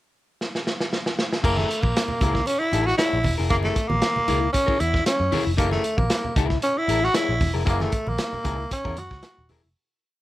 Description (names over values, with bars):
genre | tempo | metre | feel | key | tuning
funk | 116 BPM | 4/4 | straight | F# mixolydian | A4 = 439 Hz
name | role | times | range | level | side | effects
vintage drum kit | drums | 0.4-9.6 s | crash cymbal, hi-hat, kick drum, snare drum | -25 LUFS | equal | none
raspy tenor saxophone | melody | 1.4-9.5 s | A3 to F#4 | -24 LUFS | equal | none
electric guitar at the edge of break-up | accompaniment | 1.4-9.7 s | E4 to C#5 | -28 LUFS | left 6 dB | phaser
vintage muted picked electric bass | bass | 1.4-9.7 s | D#1 to F#2 | -26 LUFS | equal | none
congas | percussion | 1.4-9.6 s | none | -33 LUFS | right 2 dB | none
room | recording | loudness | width
little or no reverb | none | -20 LUFS | side -16 dB against mid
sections
0.0-1.4 pickup bar; 1.4-9.8 groove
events
drum fill 0.4-1.4; fade-out 7.7-9.8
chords
0.0 N.C.; 1.4 F#9 (rootless)